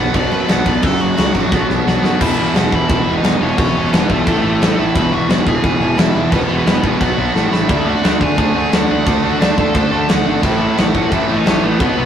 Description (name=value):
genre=punk rock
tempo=175 BPM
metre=4/4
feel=straight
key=unclear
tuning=A4 = 440 Hz
part: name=nasal lead guitar with a parked wah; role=melody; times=0.0-12.1 s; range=A3 to A5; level=-22 LUFS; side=left 1 dB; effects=overdrive
part: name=cranked stack guitar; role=riff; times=0.0-12.1 s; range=E2 to D4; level=-18 LUFS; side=right 4 dB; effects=overdrive
part: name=distorted electric guitar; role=riff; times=0.0-12.1 s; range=E2 to D4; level=-20 LUFS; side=left 5 dB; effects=distortion
part: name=distorted electric guitar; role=riff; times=0.0-2.2, 7.7-12.1 s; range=F#2 to D4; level=-26 LUFS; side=equal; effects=none
part: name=fuzz picked electric bass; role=bass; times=0.0-12.1 s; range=E1 to F#2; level=-22 LUFS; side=equal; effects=overdrive
part: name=big rock drum kit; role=drums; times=0.1-11.9 s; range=crash cymbal, kick drum, snare drum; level=-17 LUFS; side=equal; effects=none
room=moderate small room reverb, RT60 0.5 s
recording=rough rehearsal-room recording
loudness=-12 LUFS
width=side -9 dB against mid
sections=0.0-2.2 A section; 2.2-12.1 B section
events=lead electric guitar solo 0.0-2.2; drum fill 1.5-2.2, 7.4-7.7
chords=0.0 B5; 0.8 F#; 1.5 B5; 2.2 E5; 4.3 A5; 5.0 E; 7.0 B5; 7.4 A5; 7.7 D; 10.4 A